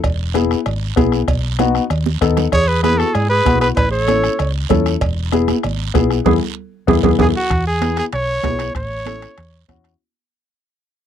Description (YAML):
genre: latin, cumbia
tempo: 193 BPM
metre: 4/4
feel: straight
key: E major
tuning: A4 = 440 Hz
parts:
  - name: hollow-body short-scale fingered electric bass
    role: bass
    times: 0.0-9.9 s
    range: E1 to G#2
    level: -20 LUFS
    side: equal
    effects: none
  - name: bombo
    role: percussion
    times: 0.0-10.0 s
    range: none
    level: -22 LUFS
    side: equal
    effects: none
  - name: cowbell and timbales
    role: percussion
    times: 0.0-10.0 s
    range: none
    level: -27 LUFS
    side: right 8 dB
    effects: none
  - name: guiro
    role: percussion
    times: 0.0-10.0 s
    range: none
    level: -32 LUFS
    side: right 21 dB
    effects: none
  - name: dark upright piano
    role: accompaniment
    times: 0.3-9.9 s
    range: B3 to A4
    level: -19 LUFS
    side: left 10 dB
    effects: none
  - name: congas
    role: percussion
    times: 0.4-9.8 s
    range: none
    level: -22 LUFS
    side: right 12 dB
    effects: none
  - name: warm trumpet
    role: melody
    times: 2.5-4.5, 7.2-9.7 s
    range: F#4 to C#5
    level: -18 LUFS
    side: equal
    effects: none
  - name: growling clarinet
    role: second line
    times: 2.5-7.3 s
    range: E4 to A4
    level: -22 LUFS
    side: right 8 dB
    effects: none
room: light reverb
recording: dry, close 1970s-style studio recording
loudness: -14 LUFS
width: side -9 dB against mid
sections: 0.0-7.5 A section; 7.5-10.0 B section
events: drum fill 2.1-2.5, 7.0-7.5; band accent 6.3-7.5; fade-out 7.5-10.0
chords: 0.0 E; 1.3 B7; 2.5 E; 3.8 A; 5.0 E; 8.8 A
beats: | 0.04 0.35 0.67 0.98 | 1.29 1.60 1.91 2.22 | 2.53 2.84 3.15 3.46 | 3.77 4.08 4.39 4.70 | 5.01 5.33 5.64 5.95 | 6.26 6.57 6.88 7.19 | 7.50 7.82 8.13 8.44 | 8.75 9.06 9.38 9.69